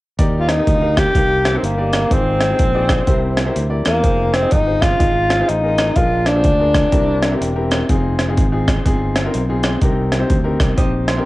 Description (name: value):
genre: uptempo gospel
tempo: 124 BPM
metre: 4/4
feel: swing 63% on 8ths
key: Eb major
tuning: A4 = 438 Hz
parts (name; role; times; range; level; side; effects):
- clear grand piano; accompaniment; 0.2-11.3 s; Ab2 to Bb5; -22 LUFS; left 2 dB; cassette tape
- fingered electric bass; bass; 0.2-11.2 s; E1 to E2; -20 LUFS; equal; transformer saturation
- jungle sampler-style drum kit; drums; 0.2-11.2 s; hi-hat, kick drum, rim click; -18 LUFS; equal; overdrive, cassette tape
- breathy tenor saxophone; melody; 0.4-7.7 s; Bb3 to G4; -17 LUFS; equal; cassette tape, analog delay
- clean electric guitar; second line; 10.8-11.3 s; Eb4 to Eb5; -27 LUFS; right 5 dB; cassette tape, analog delay
room: light reverb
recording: home recording on cassette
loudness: -14 LUFS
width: side -18 dB against mid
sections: 0.2-11.3 A section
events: grand piano fill 6.9-7.9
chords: 0.2 Ebmaj7; 2.1 Ab6; 3.1 C7; 4.0 Fm7; 6.0 Bb7; 6.9 C7; 7.9 Fm7; 9.8 Cm7